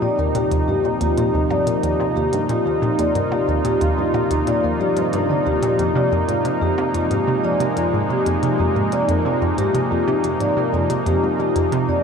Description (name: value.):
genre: ambient, sequencer-driven space music.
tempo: 91 BPM.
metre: 4/4.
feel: straight.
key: unclear.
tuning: A4 = 436 Hz.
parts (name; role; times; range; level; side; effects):
lush unison pad; sustained chords; 0.0-12.0 s; C3 to G4; -21 LUFS; equal; chorus.
vibraphone with soft mallets; arpeggios; 0.0-12.0 s; D4 to D5; -22 LUFS; left 1 dB; auto-pan, ping-pong delay.
analog pluck; riff; 0.0-12.0 s; Eb2 to D3; -23 LUFS; equal; chorus, ping-pong delay.
electronic hi-hat and percussion blips; percussion; 0.3-11.9 s; none; -38 LUFS; right 2 dB; ping-pong delay.
room: wet cathedral reverb, RT60 5.2 s.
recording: dreamy mix soaked in reverb.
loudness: -17 LUFS.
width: side -6 dB against mid.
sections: 0.0-12.0 A section.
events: none.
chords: 0.0 Ebmaj7; 5.8 Fmadd9.